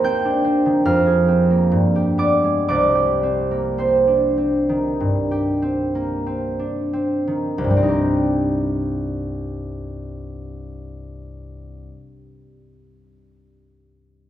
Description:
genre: classical, solo harp piece.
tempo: 44-75 BPM.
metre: 4/4.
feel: rubato.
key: C minor.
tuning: A4 = 440 Hz.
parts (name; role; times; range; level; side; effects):
concert harp; solo; 0.0-12.2 s; C2 to G6; -18 LUFS; right 1 dB; none.
room: wet recital hall reverb, RT60 1.4 s.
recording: heard from further back in the room.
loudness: -17 LUFS.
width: side -11 dB against mid.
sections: 0.0-7.6 A section; 7.6-12.5 B section.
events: slowing down 0.0-7.6.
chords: 0.0 Cm/Eb; 0.8 Fmadd11; 1.7 G; 2.7 Cm.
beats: 0.02 0.83 1.70 | 2.68 3.78 5.00 6.29 | 7.60 8.82 10.06 11.27.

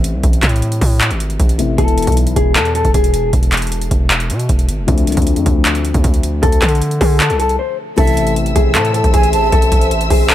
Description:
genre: hip hop, trap.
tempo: 155 BPM.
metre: 4/4.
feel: half-time.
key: A harmonic minor.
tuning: A4 = 441 Hz.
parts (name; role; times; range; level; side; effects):
felt-muted upright piano; accompaniment; 0.0-10.3 s; B2 to E4; -22 LUFS; left 6 dB; none.
distorted 808-style bass; bass; 0.0-10.3 s; E1 to D3; -17 LUFS; equal; distortion.
booming analog drum machine; drums; 0.0-10.3 s; handclaps, hi-hat, kick drum; -14 LUFS; equal; overdrive.
mellow electric guitar; melody; 1.8-3.3, 6.4-10.3 s; G#4 to C5; -18 LUFS; left 2 dB; none.
breathy jazz flute; second line; 8.0-9.5 s; E5 to A5; -21 LUFS; right 4 dB; digital delay.
dark symphonic string section; sustained chords; 8.0-10.3 s; C5 to E6; -22 LUFS; left 1 dB; none.
room: studio reverb.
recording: none.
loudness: -12 LUFS.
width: side -12 dB against mid.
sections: 0.0-8.0 A section; 8.0-10.3 B section.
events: break 0.0-1.8, 7.6-8.0.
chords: 0.0 Am; 1.8 E5; 4.9 Dm7; 8.0 Am.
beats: | 0.23 0.62 1.01 1.40 | 1.78 2.17 2.56 2.94 | 3.33 3.72 4.11 4.49 | 4.88 5.27 5.65 6.04 | 6.43 6.82 7.20 7.59 | 7.98 8.36 8.75 9.14 | 9.52 9.91 10.30.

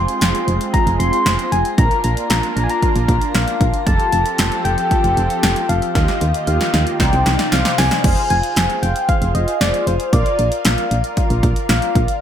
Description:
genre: synth-pop.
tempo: 115 BPM.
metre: 4/4.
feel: straight.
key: unclear.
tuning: A4 = 439 Hz.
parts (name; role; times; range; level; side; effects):
soft struck synth lead; melody; 0.0-12.2 s; C5 to C6; -20 LUFS; left 2 dB; chorus, shimmer reverb.
mellow synth brass; accompaniment; 0.0-12.2 s; C4 to F5; -24 LUFS; left 1 dB; chorus, phaser, shimmer reverb.
warm analog pad; sustained chords; 0.0-8.0 s; C3 to D5; -27 LUFS; right 2 dB; chorus, shimmer reverb.
solid FM bass; bass; 0.0-12.1 s; F1 to Eb2; -18 LUFS; right 1 dB; none.
punchy analog drum machine; drums; 0.1-12.2 s; crash cymbal, hi-hat, kick drum, snare drum; -19 LUFS; right 1 dB; gated reverb.
room: moderate plate reverb, RT60 1.5 s.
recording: bright 1980s-style digital production.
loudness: -14 LUFS.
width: side -9 dB against mid.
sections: 0.0-8.0 A section; 8.0-12.2 A section.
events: drum fill 6.0-8.0.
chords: 0.0 Fm; 1.8 Bb; 3.9 Fadd9; 6.0 Ebadd9; 7.0 Cmadd9; 8.0 Fm; 10.1 Bb.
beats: 0.22 0.74 1.26 | 1.78 2.30 2.83 3.35 | 3.87 4.39 4.91 5.43 | 5.96 6.48 7.00 7.52 | 8.04 8.56 9.09 9.61 | 10.13 10.65 11.17 11.69.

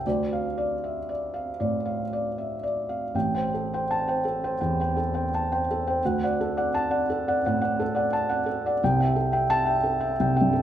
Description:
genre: neoclassical minimalist piano.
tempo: 76-88 BPM.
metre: 4/4.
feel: rubato.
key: A minor.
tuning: A4 = 440 Hz.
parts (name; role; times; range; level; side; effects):
felt-muted upright piano; solo; 0.0-10.6 s; A1 to A5; -23 LUFS; equal; none.
room: wet large studio reverb, RT60 1.3 s.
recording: band playing live in one room.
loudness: -23 LUFS.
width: side -10 dB against mid.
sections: 0.0-3.1 A section; 3.1-10.6 A section.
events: none.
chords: 0.0 Dm; 3.1 Am7; 6.0 D; 8.8 Am7/C.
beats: | 0.04 0.82 1.60 2.37 | 3.14 3.87 4.59 5.30 | 6.01 6.71 7.42 8.11 | 8.80 9.49 10.18.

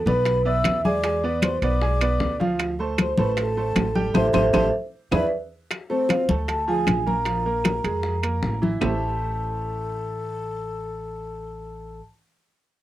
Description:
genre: Afro-Cuban jazz.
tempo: 154 BPM.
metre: 4/4.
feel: straight.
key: unclear.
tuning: A4 = 440 Hz.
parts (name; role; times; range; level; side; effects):
vibraphone with soft mallets; melody; 0.0-12.0 s; A4 to Bb5; -25 LUFS; right 1 dB; none.
breathy mellow concert flute; second line; 0.0-12.0 s; C4 to E6; -32 LUFS; left 6 dB; none.
bright upright piano; accompaniment; 0.1-12.0 s; E3 to G#5; -29 LUFS; right 3 dB; none.
upright bass; bass; 0.1-12.0 s; A1 to F2; -27 LUFS; equal; none.
bongos; percussion; 0.1-8.9 s; none; -34 LUFS; left 4 dB; none.
congas; percussion; 0.1-8.9 s; none; -26 LUFS; left 2 dB; none.
timbales; percussion; 0.3-8.9 s; none; -28 LUFS; right 6 dB; none.
claves; percussion; 0.6-8.9 s; none; -34 LUFS; left 8 dB; none.
room: light reverb.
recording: dry, close 1970s-style studio recording.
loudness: -21 LUFS.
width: side -14 dB against mid.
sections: 0.0-5.7 A section; 5.7-8.8 B section; 8.8-11.9 C section.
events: band accent 4.1-5.7; drum fill 5.1-5.7.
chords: 0.0 E7; 2.6 Dm7; 4.1 Am7; 4.9 E; 5.7 Dm7; 7.3 Bb5; 8.8 Am7.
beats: 0.26 0.65 | 1.04 1.43 1.81 2.20 | 2.59 2.98 3.37 3.76 | 4.15 4.54 4.93 5.32 | 5.70 6.09 6.48 6.87 | 7.26 7.65 8.04 8.43 | 8.82 9.21 9.60 9.99 | 10.38 10.77 11.16 11.55.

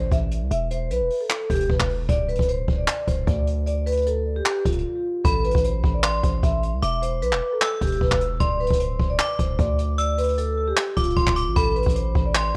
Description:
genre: hip hop, trap.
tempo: 152 BPM.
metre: 4/4.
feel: half-time.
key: A minor.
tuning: A4 = 440 Hz.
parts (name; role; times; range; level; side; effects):
vibraphone with soft mallets; melody; 0.0-12.5 s; F4 to E5; -28 LUFS; equal; none.
hard-hitting 808-style bass; bass; 0.0-12.5 s; D1 to D2; -27 LUFS; equal; none.
jazz brush drum kit; drums; 0.1-12.4 s; handclaps, hi-hat, kick drum; -26 LUFS; equal; none.
metallic FM bell; second line; 5.2-12.6 s; B5 to E6; -31 LUFS; equal; chorus, tape echo.
room: studio reverb.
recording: worn, warbling old tape, cassette tape, warbly pitch drift.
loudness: -23 LUFS.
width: mono.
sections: 0.0-12.6 A section.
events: break 4.9-5.2.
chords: 0.0 Am; 0.5 E5; 2.1 N.C.; 5.2 Amadd9; 6.8 E5; 8.4 D7(no3); 11.6 Amadd9.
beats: 0.11 | 0.51 0.90 1.30 1.69 | 2.09 2.48 2.88 3.27 | 3.67 4.06 4.46 4.85 | 5.25 5.64 6.04 6.43 | 6.83 7.22 7.61 8.01 | 8.40 8.80 9.19 9.59 | 9.98 10.38 10.77 11.17 | 11.56 11.96 12.35.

